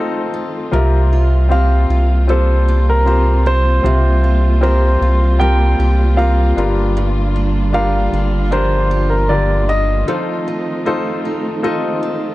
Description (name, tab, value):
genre	pop ballad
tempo	77 BPM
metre	4/4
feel	straight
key	unclear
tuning	A4 = 440 Hz
part	warm concert grand piano	melody	0.0-12.3 s	Bb4 to G5	-20 LUFS	right 1 dB	tape echo
part	clear baby grand piano	accompaniment	0.0-12.3 s	G2 to Eb5	-20 LUFS	left 3 dB	none
part	warm studio string section	sustained chords	0.0-12.3 s	C3 to F4	-25 LUFS	equal	none
part	picked steel-string acoustic guitar	arpeggios	0.0-12.3 s	G2 to A4	-25 LUFS	right 4 dB	tape echo
part	warm sub bass	bass	0.7-10.0 s	G1 to C2	-14 LUFS	equal	none
room	small room ambience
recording	dark, warm production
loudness	-13 LUFS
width	side -17 dB against mid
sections	0.0-12.3 A section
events	break 10.1-12.3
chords	0.0 F7; 0.7 C7sus4; 6.6 Gm7; 10.1 F7